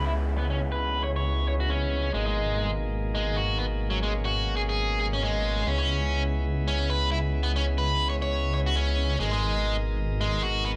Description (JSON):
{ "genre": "breakbeat", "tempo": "136 BPM", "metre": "4/4", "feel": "swing 56% on 16ths", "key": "G# minor", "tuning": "A4 = 440 Hz", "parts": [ { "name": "bright tonewheel organ", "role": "sustained chords", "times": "0.0-10.8 s", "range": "B2 to A#4", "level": "-36 LUFS", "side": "equal", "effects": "overdrive, stopped rotary speaker, low-pass filter" }, { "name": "overdriven electric guitar", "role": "riff", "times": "0.0-10.7 s", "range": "F#3 to C#5", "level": "-31 LUFS", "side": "equal", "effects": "tube saturation, low-pass filter, tape echo" }, { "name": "dark detuned saw bass", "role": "bass", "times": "0.0-10.8 s", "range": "G#1 to C#2", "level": "-30 LUFS", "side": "equal", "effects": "none" }, { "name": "downlifter", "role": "sound effects", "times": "0.0-2.1 s", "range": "none", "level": "-44 LUFS", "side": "equal", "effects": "none" } ], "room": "light reverb", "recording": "none", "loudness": "-27 LUFS", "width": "mono", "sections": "0.0-10.8 A section", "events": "filter sweep on tonewheel organ 0.0-10.8", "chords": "0.0 C#m7; 2.1 G#madd9; 5.7 C#m7; 9.2 G#madd9" }